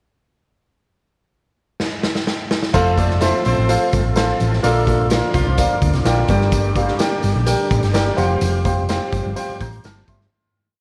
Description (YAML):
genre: uptempo 1960s-style soul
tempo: 127 BPM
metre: 4/4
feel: straight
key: F major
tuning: A4 = 445 Hz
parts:
  - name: raw garage drum kit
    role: drums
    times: 1.8-10.3 s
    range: crash cymbal, hi-hat, kick drum, snare drum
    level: -24 LUFS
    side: equal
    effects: none
  - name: warm upright piano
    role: accompaniment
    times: 2.7-10.5 s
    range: G2 to G6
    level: -23 LUFS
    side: equal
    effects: none
  - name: tonewheel organ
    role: sustained chords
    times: 2.7-10.3 s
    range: D3 to A4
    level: -29 LUFS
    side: equal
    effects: slow rotary speaker, overdrive, chorus vibrato
  - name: hollow-body short-scale fingered electric bass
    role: bass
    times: 2.7-10.3 s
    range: F1 to D2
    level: -22 LUFS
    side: equal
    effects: none
  - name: congas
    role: percussion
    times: 2.7-10.2 s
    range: none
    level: -36 LUFS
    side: equal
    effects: none
  - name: tambourine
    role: percussion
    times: 2.7-10.2 s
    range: none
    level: -37 LUFS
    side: equal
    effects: none
  - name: mellow horn section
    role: second line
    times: 2.8-5.8 s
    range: F3 to C5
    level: -26 LUFS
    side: equal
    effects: none
room: moderate echo chamber reverb, RT60 1.8 s, small room ambience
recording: none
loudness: -18 LUFS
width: mono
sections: 0.8-2.7 pickup bar; 2.7-10.3 A section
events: drum fill 1.8-2.7; fade-out 8.4-10.3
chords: 0.8 N.C.; 2.7 F; 4.6 Bb; 6.3 Gm; 8.2 Fsus2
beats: | 0.85 1.32 1.79 2.27 | 2.74 3.22 3.69 4.16 | 4.64 5.11 5.58 6.05 | 6.53 7.00 7.47 7.95 | 8.42 8.89 9.37 9.84